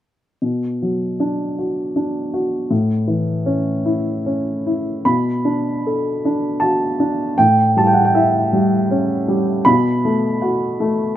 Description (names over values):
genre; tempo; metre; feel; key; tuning
classical, lyrical solo piano; 79 BPM; 3/4; rubato; B minor; A4 = 439 Hz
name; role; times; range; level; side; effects
dark upright piano; solo; 0.4-11.2 s; A2 to B5; -16 LUFS; equal; none
room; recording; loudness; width
light reverb; close, detailed microphones; -16 LUFS; side -12 dB against mid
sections
0.4-5.1 A section; 5.1-11.2 B section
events
none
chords
0.4 Bm; 2.7 A; 5.1 Bm7; 7.4 A7; 9.7 B7(no3)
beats
| 0.42 1.20 1.96 | 2.71 3.47 4.25 | 5.05 5.85 6.62 | 7.38 8.15 8.92 | 9.67 10.43